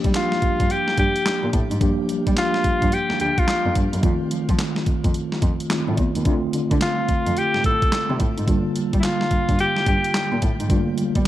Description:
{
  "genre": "R&B, new jack swing",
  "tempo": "108 BPM",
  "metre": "4/4",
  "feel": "swing 64% on 16ths",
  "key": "G minor",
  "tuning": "A4 = 440 Hz",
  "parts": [
    { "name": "mellow tine electric piano", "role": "accompaniment", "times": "0.0-11.3 s", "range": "D3 to G4", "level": "-24 LUFS", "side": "equal", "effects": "medium stereo tremolo, shimmer reverb" },
    { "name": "dark cello", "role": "bass", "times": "0.0-11.2 s", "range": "D2 to G3", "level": "-25 LUFS", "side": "equal", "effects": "none" },
    { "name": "clean 12-bit digital drum machine", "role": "drums", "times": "0.0-11.3 s", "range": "handclaps, hi-hat, kick drum, snare drum", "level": "-22 LUFS", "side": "equal", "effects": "none" },
    { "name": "bright alto saxophone", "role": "melody", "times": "0.2-10.4 s", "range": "E4 to A4", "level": "-23 LUFS", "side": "left 1 dB", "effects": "shimmer reverb" }
  ],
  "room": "light reverb",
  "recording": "dark, warm production",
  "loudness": "-18 LUFS",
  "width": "side -14 dB against mid",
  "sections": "0.0-11.3 A section",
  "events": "none",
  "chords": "0.0 Gm7; 4.0 F7; 6.3 Dm7; 8.5 Gm7",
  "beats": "0.14 0.70 1.25 | 1.81 2.37 2.92 3.48 | 4.03 4.59 5.14 5.70 | 6.25 6.81 7.37 7.92 | 8.48 9.03 9.59 10.14 | 10.70 11.25"
}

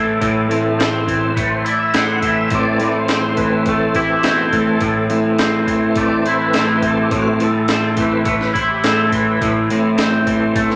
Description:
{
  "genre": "psychedelic rock",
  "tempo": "104 BPM",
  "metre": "4/4",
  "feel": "straight",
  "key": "A minor",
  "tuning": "A4 = 440 Hz",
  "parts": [
    { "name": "tonewheel organ", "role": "sustained chords", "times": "0.0-10.8 s", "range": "E3 to F#5", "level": "-22 LUFS", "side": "equal", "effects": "slow rotary speaker, chorus vibrato" },
    { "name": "twangy electric guitar", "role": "riff", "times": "0.0-10.8 s", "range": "A2 to E4", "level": "-21 LUFS", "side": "equal", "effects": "rotary speaker" },
    { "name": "fuzz picked electric bass", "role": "bass", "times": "0.0-10.8 s", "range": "A2 to B2", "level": "-22 LUFS", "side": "equal", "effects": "overdrive" },
    { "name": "breakbeat sampler-style drum kit", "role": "drums", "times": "0.2-10.8 s", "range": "hi-hat, kick drum, snare drum", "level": "-25 LUFS", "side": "equal", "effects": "none" }
  ],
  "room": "moderate large studio reverb, RT60 1.2 s",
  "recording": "none",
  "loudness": "-16 LUFS",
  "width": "mono",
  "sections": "0.0-10.8 A section",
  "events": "tonewheel organ solo 0.0-10.8",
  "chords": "0.0 Am",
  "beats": "| 0.21 0.79 1.36 1.94 | 2.51 3.09 3.66 4.24 | 4.81 5.39 5.96 6.54 | 7.11 7.69 8.26 8.84 | 9.41 9.98 10.56"
}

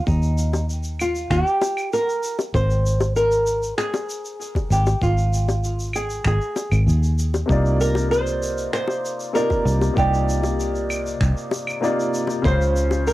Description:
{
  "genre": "sunset chillout",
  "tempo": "97 BPM",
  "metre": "4/4",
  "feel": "straight",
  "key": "unclear",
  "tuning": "A4 = 440 Hz",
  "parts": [
    { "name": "flamenco guitar", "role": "melody", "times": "0.0-13.1 s", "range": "Eb4 to C5", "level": "-24 LUFS", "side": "right 1 dB", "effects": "cassette tape, tape echo" },
    { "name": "fingered electric bass", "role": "bass", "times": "0.1-13.1 s", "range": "Ab1 to Eb2", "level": "-20 LUFS", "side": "equal", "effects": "none" },
    { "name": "electronic kick drum", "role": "drums", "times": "0.1-12.6 s", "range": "none", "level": "-24 LUFS", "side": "equal", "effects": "overdrive, cassette tape" },
    { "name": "shaker, claves and finger snaps", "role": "drums", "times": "0.1-13.1 s", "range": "none", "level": "-33 LUFS", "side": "equal", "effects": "cassette tape" },
    { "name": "bongos", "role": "percussion", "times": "0.5-13.0 s", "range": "none", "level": "-25 LUFS", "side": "left 3 dB", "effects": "none" },
    { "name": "clear grand piano", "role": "accompaniment", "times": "7.5-13.1 s", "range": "C3 to D5", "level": "-23 LUFS", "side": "left 1 dB", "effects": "auto-pan, vintage 12-bit sampler grit, cassette tape" }
  ],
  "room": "moderate small room ambience, RT60 0.5 s",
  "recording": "home recording on cassette",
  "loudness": "-19 LUFS",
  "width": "side -16 dB against mid",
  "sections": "0.0-13.1 A section",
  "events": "none",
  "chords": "0.0 Eb; 2.5 N.C.; 7.5 Cm11; 12.4 Dbmaj7",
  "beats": "| 0.07 0.69 1.30 1.92 | 2.54 3.16 3.78 4.40 | 5.02 5.63 6.25 6.87 | 7.49 8.11 8.73 9.35 | 9.96 10.58 11.20 11.82 | 12.44 13.06"
}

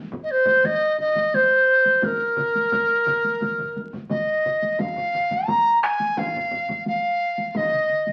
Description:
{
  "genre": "japanese traditional, taiko drum ensemble",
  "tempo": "87 BPM",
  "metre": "4/4",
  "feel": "straight",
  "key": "Bb suspended pentatonic",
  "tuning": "A4 = 440 Hz",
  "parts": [
    { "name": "taiko ensemble", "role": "percussion", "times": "0.1-6.8 s", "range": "none", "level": "-36 LUFS", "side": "equal", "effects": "none" },
    { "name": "bright reedy large dizi", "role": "melody", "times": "0.2-8.1 s", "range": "Bb4 to Bb5", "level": "-22 LUFS", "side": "equal", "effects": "none" },
    { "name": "solo taiko drums", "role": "percussion", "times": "0.5-8.1 s", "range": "none", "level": "-34 LUFS", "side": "equal", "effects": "none" },
    { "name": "solo taiko drums", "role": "percussion", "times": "1.0-7.7 s", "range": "none", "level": "-39 LUFS", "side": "equal", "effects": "none" },
    { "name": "taiko ensemble", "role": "percussion", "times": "2.0-8.1 s", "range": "none", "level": "-43 LUFS", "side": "equal", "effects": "none" }
  ],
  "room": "wet studio reverb, RT60 0.7 s",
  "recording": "very old 78 rpm record, vinyl crackle",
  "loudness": "-21 LUFS",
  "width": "mono",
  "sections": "0.0-4.8 A section; 4.8-8.1 B section",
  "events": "none",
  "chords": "none",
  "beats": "0.65 1.34 | 2.03 2.73 3.42 4.11 | 4.80 5.49 6.18 6.87 | 7.55"
}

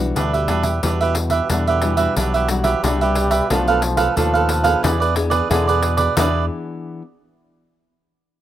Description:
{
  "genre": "samba and choro",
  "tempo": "90 BPM",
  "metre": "4/4",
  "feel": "straight",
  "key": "E minor",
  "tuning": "A4 = 442 Hz",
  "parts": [
    { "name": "nylon-string guitar", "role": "accompaniment", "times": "0.0-7.0 s", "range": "B2 to G#4", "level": "-26 LUFS", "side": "left 4 dB", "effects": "none" },
    { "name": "modern bright fingered electric bass", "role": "bass", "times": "0.0-6.5 s", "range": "B1 to E2", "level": "-21 LUFS", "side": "equal", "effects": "none" },
    { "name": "mellow trombone", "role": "second line", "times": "0.2-6.5 s", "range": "B2 to G3", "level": "-26 LUFS", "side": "left 2 dB", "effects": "plate reverb" },
    { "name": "cavaquinho", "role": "accompaniment", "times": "0.2-6.4 s", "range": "D4 to F5", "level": "-19 LUFS", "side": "right 6 dB", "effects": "plate reverb" },
    { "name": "pandeiro", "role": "percussion", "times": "0.2-6.3 s", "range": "none", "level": "-25 LUFS", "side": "left 4 dB", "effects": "none" }
  ],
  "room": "light reverb",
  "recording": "rough home demo mix",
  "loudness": "-16 LUFS",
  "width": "side -12 dB against mid",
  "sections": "0.8-6.2 A section; 6.2-8.4 B section",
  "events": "none",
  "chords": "0.0 Em9; 3.5 Bm7b5; 4.8 E7",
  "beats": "0.16 | 0.83 1.50 2.17 2.83 | 3.50 4.17 4.84 5.51 | 6.18 6.84"
}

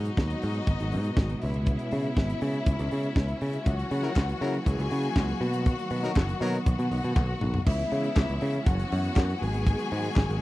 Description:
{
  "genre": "disco",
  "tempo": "120 BPM",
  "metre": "4/4",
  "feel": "straight",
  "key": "C# dorian",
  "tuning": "A4 = 440 Hz",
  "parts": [
    { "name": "clear studio string section", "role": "second line", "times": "0.0-10.4 s", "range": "D#4 to G#5", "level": "-35 LUFS", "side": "left 2 dB", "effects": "none" },
    { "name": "clear studio string section", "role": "sustained chords", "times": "0.0-10.4 s", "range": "B2 to F#4", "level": "-33 LUFS", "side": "equal", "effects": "none" },
    { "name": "picked electric bass", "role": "bass", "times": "0.0-10.4 s", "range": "F#1 to C#3", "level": "-28 LUFS", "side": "equal", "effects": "none" },
    { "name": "tight funk drum kit", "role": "drums", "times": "0.1-10.4 s", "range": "crash cymbal, hi-hat, kick drum, snare drum, toms", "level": "-24 LUFS", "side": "equal", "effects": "none" },
    { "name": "warm horn section", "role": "stabs", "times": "4.0-6.6 s", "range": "F#3 to A#4", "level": "-31 LUFS", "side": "left 4 dB", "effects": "none" },
    { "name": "group handclap", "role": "percussion", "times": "4.2-10.3 s", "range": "none", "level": "-41 LUFS", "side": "left 9 dB", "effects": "none" }
  ],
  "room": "little or no reverb",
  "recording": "dry, close 1970s-style studio recording",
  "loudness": "-25 LUFS",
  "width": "side -17 dB against mid",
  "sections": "0.0-7.7 A section; 7.7-10.4 B section",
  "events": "drum fill 7.2-7.7",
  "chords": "0.0 G#m7; 1.4 C#m7; 3.7 F#7/C#; 5.4 Bmaj7; 7.7 C#m7; 8.7 F#7sus4; 9.4 G#m7",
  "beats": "0.18 0.67 1.17 | 1.67 2.17 2.67 3.17 | 3.67 4.16 4.66 5.16 | 5.66 6.16 6.66 7.16 | 7.66 8.16 8.66 9.16 | 9.66 10.16"
}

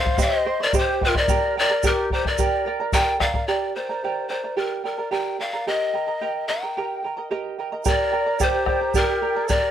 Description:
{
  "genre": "andean folk, Andean ensemble",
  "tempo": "110 BPM",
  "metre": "2/4",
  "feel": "straight",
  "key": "G minor",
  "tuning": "A4 = 439 Hz",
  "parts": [
    { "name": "breathy pan flute", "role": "melody", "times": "0.0-9.7 s", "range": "Bb4 to G5", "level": "-23 LUFS", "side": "left 3 dB", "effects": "none" },
    { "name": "breathy bright large quena", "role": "second line", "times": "0.0-3.2, 7.9-9.7 s", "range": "F4 to C5", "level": "-27 LUFS", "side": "equal", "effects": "none" },
    { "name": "charango", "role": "accompaniment", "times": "0.0-9.7 s", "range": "G4 to C6", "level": "-25 LUFS", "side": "right 6 dB", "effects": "none" },
    { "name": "bombo", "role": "percussion", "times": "0.1-3.5, 7.9-9.6 s", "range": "none", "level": "-25 LUFS", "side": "left 2 dB", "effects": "none" },
    { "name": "tube shaker", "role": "percussion", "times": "0.2-3.1, 7.8-9.6 s", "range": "none", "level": "-34 LUFS", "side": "right 10 dB", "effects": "none" }
  ],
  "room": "studio reverb",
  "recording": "dry, close 1970s-style studio recording",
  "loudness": "-20 LUFS",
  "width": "side -10 dB against mid",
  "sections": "0.0-3.5 A section; 3.5-7.9 B section; 7.9-9.7 C section",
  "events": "none",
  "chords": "0.2 Cm; 1.3 Gm; 5.7 Eb; 7.9 Gm",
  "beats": "| 0.19 0.74 | 1.29 1.84 | 2.38 2.93 | 3.48 4.03 | 4.58 5.12 | 5.67 6.22 | 6.77 7.31 | 7.86 8.40 | 8.95 9.49"
}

